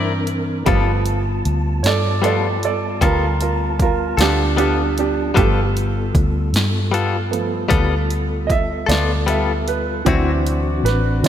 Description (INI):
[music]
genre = slow blues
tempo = 51 BPM (dotted quarters)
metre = 12/8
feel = straight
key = G mixolydian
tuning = A4 = 440 Hz
[part]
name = direct-recorded clean electric guitar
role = accompaniment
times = 0.0-10.3 s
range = D3 to D5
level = -23 LUFS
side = left 5 dB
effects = harmonic tremolo, slapback echo
[part]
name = mellow tonewheel organ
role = sustained chords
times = 0.0-11.3 s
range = E3 to A5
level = -26 LUFS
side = left 1 dB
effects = chorus vibrato, fast rotary speaker
[part]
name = vintage muted fingered electric bass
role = bass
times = 0.0-11.3 s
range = G1 to D3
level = -20 LUFS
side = equal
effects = none
[part]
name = punchy analog drum machine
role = drums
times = 0.3-11.3 s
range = hi-hat, kick drum, snare drum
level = -22 LUFS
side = equal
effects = none
[part]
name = bright upright piano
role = accompaniment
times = 0.6-11.3 s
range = E3 to E5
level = -22 LUFS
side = right 6 dB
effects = slapback echo
[part]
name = warm horn section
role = sustained chords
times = 10.1-11.3 s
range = C4 to D5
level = -29 LUFS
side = left 4 dB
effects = none
[sound]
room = moderate lush hall reverb, RT60 2.9 s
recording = big arena sound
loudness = -16 LUFS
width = side -10 dB against mid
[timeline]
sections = 0.0-11.3 A section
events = upright piano solo 0.0-11.3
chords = 0.0 C9; 0.7 G9; 10.1 D9